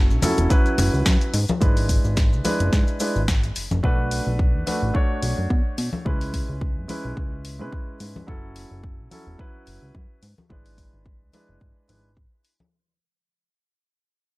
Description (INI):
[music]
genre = nu-disco, nu disco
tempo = 108 BPM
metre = 4/4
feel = swing 55% on 16ths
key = unclear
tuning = A4 = 440 Hz
[part]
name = warm baby grand piano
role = accompaniment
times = 0.0-12.1 s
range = F#3 to C#5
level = -27 LUFS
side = right 1 dB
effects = tape echo
[part]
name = fat analog bass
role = bass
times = 0.0-12.3 s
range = E1 to C#3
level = -25 LUFS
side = equal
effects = none
[part]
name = maracas and congas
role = percussion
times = 0.1-12.7 s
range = none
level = -28 LUFS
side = left 2 dB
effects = none
[part]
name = house drum kit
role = drums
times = 0.2-12.6 s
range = hi-hat, snare drum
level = -29 LUFS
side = left 1 dB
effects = none
[part]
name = electronic kick drum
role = drums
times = 0.5-12.3 s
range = none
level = -21 LUFS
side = equal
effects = none
[sound]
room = studio reverb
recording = none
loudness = -19 LUFS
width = side -21 dB against mid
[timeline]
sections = 0.0-12.7 A section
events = fade-out 0.0-12.7; filter sweep on analog synth bass 0.0-12.7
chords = 0.0 F#m7; 1.3 E7/G#; 3.8 Bm7; 6.1 C#m7; 8.3 F#m7; 10.2 E7/G#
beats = 0.50 1.06 | 1.61 2.17 2.73 3.28 | 3.84 4.39 4.95 5.50 | 6.06 6.61 7.17 7.72 | 8.28 8.84 9.39 9.95 | 10.50 11.06 11.61 12.17